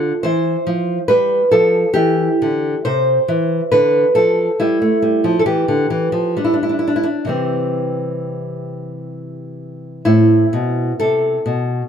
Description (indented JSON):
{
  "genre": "classical, baroque-style dance for nylon-string guitar",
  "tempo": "67 BPM",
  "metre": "3/4",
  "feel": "uneven beats, rubato",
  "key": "C major",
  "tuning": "A4 = 440 Hz",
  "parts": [
    { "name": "nylon-string guitar", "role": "solo", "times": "0.0-11.9 s", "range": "A2 to C5", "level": "-14 LUFS", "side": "equal", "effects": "none" }
  ],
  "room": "light reverb",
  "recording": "close, detailed microphones",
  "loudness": "-14 LUFS",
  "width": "side -8 dB against mid",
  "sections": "0.0-10.1 A section; 10.1-11.9 A section",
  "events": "none",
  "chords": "0.0 F5; 1.1 G7; 2.0 C; 3.7 Dm; 4.6 Fmaj13; 6.4 N.C.; 7.3 C; 10.1 Am"
}